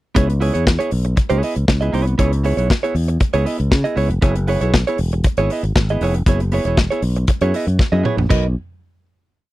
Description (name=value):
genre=disco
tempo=118 BPM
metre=4/4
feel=straight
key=unclear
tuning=A4 = 440 Hz
part: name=direct-recorded clean electric guitar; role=accompaniment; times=0.1-8.5 s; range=B3 to D#5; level=-20 LUFS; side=right 3 dB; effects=none
part: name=fingered electric bass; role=bass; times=0.2-8.5 s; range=E1 to C#3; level=-18 LUFS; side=equal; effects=none
part: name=modern studio drum kit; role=drums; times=0.2-8.4 s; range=crash cymbal, hi-hat, kick drum, snare drum, toms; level=-17 LUFS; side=equal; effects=none
room=little or no reverb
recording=dry, close 1970s-style studio recording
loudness=-15 LUFS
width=side -17 dB against mid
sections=0.2-8.3 groove; 8.3-9.5 final chord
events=drum fill 7.8-8.3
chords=0.2 C#m7; 4.2 F#9sus4; 8.3 Bmaj7